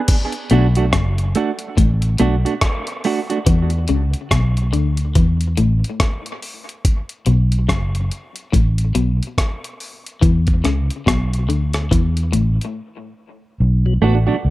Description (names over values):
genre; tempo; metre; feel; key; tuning
dub reggae; 71 BPM; 4/4; swing 60% on 16ths; B minor; A4 = 440 Hz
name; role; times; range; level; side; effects
breakbeat sampler-style drum kit; drums; 0.1-12.8 s; crash cymbal, hi-hat, kick drum, rim click; -19 LUFS; equal; none
clean electric guitar; accompaniment; 0.5-3.4, 14.0-14.4 s; A3 to F#4; -21 LUFS; right 5 dB; dub echo
electric guitar at the edge of break-up; riff; 0.5-12.5 s; F#2 to E3; -22 LUFS; left 5 dB; ensemble chorus, dub echo
vintage muted fingered electric bass; bass; 0.5-14.5 s; F#1 to E2; -16 LUFS; equal; none
mellow tonewheel organ; accompaniment; 13.9-14.4 s; B2 to D4; -24 LUFS; left 3 dB; slow rotary speaker
room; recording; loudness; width
little or no reverb; none; -15 LUFS; side -17 dB against mid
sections
0.1-13.6 A section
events
break 12.8-13.6; part muted 13.6-14.5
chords
0.1 Bm7; 3.5 E5; 6.8 B5; 10.2 E5; 13.6 Bm7